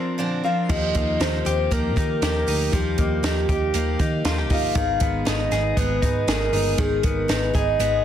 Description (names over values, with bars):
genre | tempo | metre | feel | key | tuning
jangly indie pop | 118 BPM | 4/4 | straight | Eb major | A4 = 440 Hz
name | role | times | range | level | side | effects
picked steel-string acoustic guitar | accompaniment | 0.0-8.0 s | Ab2 to Bb4 | -30 LUFS | right 6 dB | none
direct-recorded clean electric guitar | arpeggios | 0.0-8.0 s | Eb3 to Ab4 | -27 LUFS | left 4 dB | none
soft octave-layered synth lead | melody | 0.4-8.0 s | G4 to F5 | -25 LUFS | equal | chorus, phaser
reed electric piano | accompaniment | 0.7-8.0 s | Cb4 to Ab4 | -35 LUFS | left 5 dB | none
vintage muted picked electric bass | bass | 0.7-8.0 s | G1 to Eb3 | -26 LUFS | equal | none
compact cocktail drum kit | drums | 0.7-7.9 s | crash cymbal, hi-hat, kick drum, snare drum | -25 LUFS | equal | none
room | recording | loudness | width
light reverb | dense, heavily limited modern master | -19 LUFS | side -10 dB against mid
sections
0.7-8.0 A section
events
break 0.0-0.7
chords
0.0 Bbadd9; 0.7 Ebadd9; 4.8 Abm